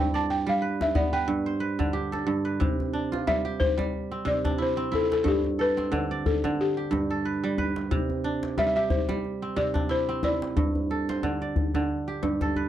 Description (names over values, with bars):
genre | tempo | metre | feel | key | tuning
west african traditional, West African string and xylophone music | 90 BPM | 4/4 | swing 56% on 16ths | C major | A4 = 440 Hz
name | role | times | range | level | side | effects
balafon | melody | 0.0-12.5 s | G4 to A5 | -27 LUFS | left 2 dB | none
kora | arpeggios | 0.0-12.7 s | G2 to D5 | -27 LUFS | right 4 dB | none
djembe | percussion | 0.8-12.7 s | none | -29 LUFS | left 2 dB | none
room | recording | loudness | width
little or no reverb | dry, close 1970s-style studio recording | -24 LUFS | side -11 dB against mid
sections
0.0-2.6 A section; 2.6-12.7 B section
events
balafon solo 0.0-2.6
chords
0.0 G; 2.6 C; 5.3 G; 7.9 C; 10.6 G5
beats
0.62 1.28 1.94 | 2.61 3.27 3.93 4.60 | 5.26 5.92 6.59 7.25 | 7.91 8.58 9.24 9.90 | 10.57 11.23 11.89 12.55